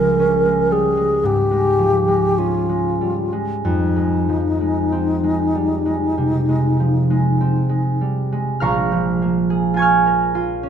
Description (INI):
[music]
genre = classical, impressionist duo for alto flute and harp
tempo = 47-57 BPM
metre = 4/4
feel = rubato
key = Bb dorian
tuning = A4 = 440 Hz
[part]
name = mellow wooden-headed alto flute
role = melody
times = 0.0-8.0 s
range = Eb4 to Bb4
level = -19 LUFS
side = left 2 dB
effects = none
[part]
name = concert harp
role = accompaniment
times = 0.0-10.7 s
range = Bb1 to Ab6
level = -18 LUFS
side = right 2 dB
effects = none
[sound]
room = moderate concert hall reverb, RT60 2.2 s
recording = close, detailed microphones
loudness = -16 LUFS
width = side -8 dB against mid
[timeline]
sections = 0.0-8.6 A section; 8.6-10.7 B section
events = none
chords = 0.0 Db6; 3.6 Fm7; 8.6 Bbm7